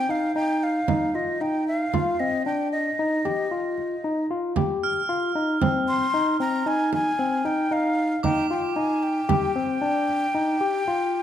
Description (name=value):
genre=contemporary instrumental, chamber music in an uneven meter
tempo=114 BPM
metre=7/4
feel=straight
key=Eb major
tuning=A4 = 440 Hz
part: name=breathy mellow silver concert flute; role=melody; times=0.0-11.2 s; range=Eb5 to C6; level=-26 LUFS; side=left 1 dB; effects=none
part: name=barky tine electric piano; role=arpeggios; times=0.0-11.2 s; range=C4 to G4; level=-24 LUFS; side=left 2 dB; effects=overdrive
part: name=frame drum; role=percussion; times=0.1-11.0 s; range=none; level=-27 LUFS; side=right 6 dB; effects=none
part: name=crotales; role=texture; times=4.8-8.8 s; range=D6 to F6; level=-33 LUFS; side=right 5 dB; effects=none
room=moderate recital hall reverb, RT60 1.4 s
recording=dark, warm production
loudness=-22 LUFS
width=side -10 dB against mid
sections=0.0-11.2 A section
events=none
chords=0.0 Cmadd11 (rootless); 1.9 Ebadd9; 5.6 Cmadd9; 9.3 Ebmaj7